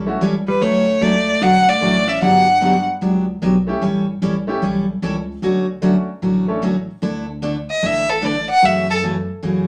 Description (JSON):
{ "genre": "country, western swing", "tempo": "150 BPM", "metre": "4/4", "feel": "swing 65% on 8ths", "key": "D major", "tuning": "A4 = 442 Hz", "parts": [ { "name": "picked steel-string acoustic guitar", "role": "accompaniment", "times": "0.0-9.7 s", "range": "C#3 to A4", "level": "-21 LUFS", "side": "equal", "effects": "none" }, { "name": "upright bass", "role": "bass", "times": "0.0-9.7 s", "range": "G1 to F#2", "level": "-29 LUFS", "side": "equal", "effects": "none" }, { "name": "bright upright piano", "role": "accompaniment", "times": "0.1-6.6 s", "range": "G3 to A4", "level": "-27 LUFS", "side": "equal", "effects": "none" }, { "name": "clear fiddle", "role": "melody", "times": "0.5-2.8, 7.7-9.0 s", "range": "A4 to F#5", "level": "-18 LUFS", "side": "equal", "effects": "none" }, { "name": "hollow-body jazz guitar", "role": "second line", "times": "0.5-2.8 s", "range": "G3 to D4", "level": "-25 LUFS", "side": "equal", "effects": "none" } ], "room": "wet studio reverb, RT60 0.6 s", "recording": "none", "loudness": "-18 LUFS", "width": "mono", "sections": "0.0-7.0 A section; 7.0-9.7 B section", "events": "fiddle solo 7.0-9.7", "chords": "0.0 A7; 0.6 Dmaj7; 2.2 Gmaj7; 3.8 A7; 5.4 Dmaj7; 7.0 Dsus2; 8.6 F#m7", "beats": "0.22 | 0.62 1.02 1.42 1.82 | 2.22 2.62 3.02 3.42 | 3.82 4.22 4.62 5.02 | 5.42 5.83 6.23 6.63 | 7.03 7.43 7.83 8.23 | 8.63 9.03 9.43" }